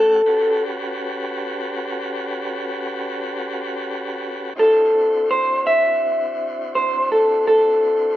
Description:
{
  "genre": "blues",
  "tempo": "56 BPM (dotted quarters)",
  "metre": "12/8",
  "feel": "straight",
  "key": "unclear",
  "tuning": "A4 = 441 Hz",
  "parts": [
    { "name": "electric guitar through a small old amp", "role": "melody", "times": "0.0-8.2 s", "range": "A4 to E5", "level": "-15 LUFS", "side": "equal", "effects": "spring reverb" },
    { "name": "tonewheel organ", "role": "sustained chords", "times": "0.0-8.2 s", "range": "A3 to F#5", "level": "-26 LUFS", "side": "equal", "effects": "slow rotary speaker" }
  ],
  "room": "little or no reverb",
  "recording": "rough home demo mix",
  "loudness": "-18 LUFS",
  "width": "side -13 dB against mid",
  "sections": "0.0-8.2 A section",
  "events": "clean electric guitar solo 0.0-8.2",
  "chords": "0.0 A13; 4.6 D9"
}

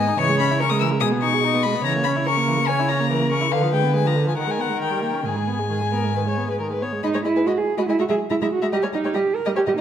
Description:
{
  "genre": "quick classical-period movement for string quartet",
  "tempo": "143 BPM",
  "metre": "4/4",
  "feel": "rubato",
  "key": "G# minor",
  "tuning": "A4 = 440 Hz",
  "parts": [
    { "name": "rich violin", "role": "melody", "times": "0.0-9.8 s", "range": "F5 to E6", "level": "-25 LUFS", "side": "left 9 dB", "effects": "none" },
    { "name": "rich violin", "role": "second line", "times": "0.0-9.8 s", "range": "G#4 to E5", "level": "-26 LUFS", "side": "left 3 dB", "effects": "none" },
    { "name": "warm viola", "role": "accompaniment", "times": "0.0-9.7 s", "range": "D3 to G#4", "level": "-25 LUFS", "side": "right 2 dB", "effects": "none" },
    { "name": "dark cello", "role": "bass", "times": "0.0-9.8 s", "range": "G#2 to A#4", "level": "-22 LUFS", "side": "right 3 dB", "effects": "none" }
  ],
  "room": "wet recital hall reverb, RT60 1.4 s",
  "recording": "none",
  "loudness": "-19 LUFS",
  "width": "side -9 dB against mid",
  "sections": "0.0-7.0 A section; 7.0-9.8 B section",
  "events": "none",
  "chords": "0.2 C#m; 1.0 G#m/B; 1.8 A#dim/C#; 3.5 Ddim7; 4.4 G#m/D#; 4.8 D#7; 5.2 G#m; 7.9 F#9/G#; 8.7 D#/G"
}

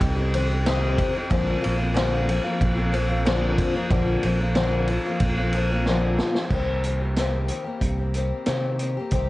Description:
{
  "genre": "folk rock and heartland rock",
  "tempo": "92 BPM",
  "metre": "4/4",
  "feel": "straight",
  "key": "C minor",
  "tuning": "A4 = 440 Hz",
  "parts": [
    { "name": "picked twelve-string acoustic guitar", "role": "accompaniment", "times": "0.0-9.3 s", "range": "Bb2 to G4", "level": "-25 LUFS", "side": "left 3 dB", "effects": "none" },
    { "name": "fingered electric bass", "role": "bass", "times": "0.0-9.3 s", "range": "Bb1 to C3", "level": "-24 LUFS", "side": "right 1 dB", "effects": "none" },
    { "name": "vintage drum kit", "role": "drums", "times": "0.0-9.3 s", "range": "crash cymbal, hi-hat, kick drum, ride cymbal, snare drum", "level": "-26 LUFS", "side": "right 1 dB", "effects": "none" }
  ],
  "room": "light reverb",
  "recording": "dark, warm production, nothing above 10.3 kHz",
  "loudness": "-21 LUFS",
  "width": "side -18 dB against mid",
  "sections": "0.0-6.5 A section; 6.5-9.3 B section",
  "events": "drum fill 5.9-6.5",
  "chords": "0.0 Cm; 1.3 Bbadd9; 6.5 Cm7"
}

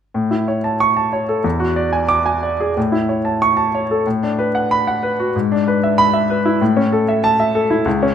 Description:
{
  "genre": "classical, virtuoso piano study",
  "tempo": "93 BPM",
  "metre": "2/4",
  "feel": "rubato",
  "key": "A major",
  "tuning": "A4 = 440 Hz",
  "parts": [
    { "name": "clear grand piano", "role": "solo", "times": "0.1-8.1 s", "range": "C#2 to D6", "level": "-14 LUFS", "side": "equal", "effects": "none" }
  ],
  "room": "moderate recital hall reverb, RT60 1.3 s",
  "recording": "none",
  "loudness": "-15 LUFS",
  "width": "side -8 dB against mid",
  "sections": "0.1-2.8 A section; 2.8-8.1 B section",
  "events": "none",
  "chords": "0.1 A; 1.4 E9; 2.8 A; 4.1 Bm7/A; 5.3 E7/G#; 6.6 A"
}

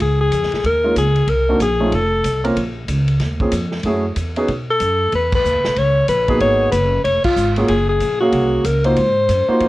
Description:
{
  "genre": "jazz, small-group swing and bop",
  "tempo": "187 BPM",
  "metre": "4/4",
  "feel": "swing 62% on 8ths",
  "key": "Db major",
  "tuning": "A4 = 440 Hz",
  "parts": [
    { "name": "warm alto saxophone", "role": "melody", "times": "0.0-2.5, 4.7-9.7 s", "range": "F4 to C#5", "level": "-17 LUFS", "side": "left 1 dB", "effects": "none" },
    { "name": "upright bass", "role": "bass", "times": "0.0-9.7 s", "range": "F1 to Cb3", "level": "-20 LUFS", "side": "right 1 dB", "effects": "none" },
    { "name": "vintage drum kit", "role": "drums", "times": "0.0-9.7 s", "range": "crash cymbal, hi-hat, kick drum, ride cymbal, snare drum", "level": "-27 LUFS", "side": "equal", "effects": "none" },
    { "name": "warm grand piano", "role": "accompaniment", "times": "0.8-9.7 s", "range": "Ab3 to F5", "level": "-19 LUFS", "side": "right 1 dB", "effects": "none" }
  ],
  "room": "light reverb",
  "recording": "worn, warbling old tape, cassette tape, warbly pitch drift",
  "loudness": "-14 LUFS",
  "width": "side -17 dB against mid",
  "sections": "0.0-9.7 A section",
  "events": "band accent 5.3, 7.2",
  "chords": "0.0 Db69; 1.3 Cm7b5; 1.9 F; 2.6 Bbm; 3.8 Gbm7; 4.5 Cb5; 5.1 E5; 6.4 Abm7; 7.0 Db; 7.7 Gbmaj9; 9.0 Ab13"
}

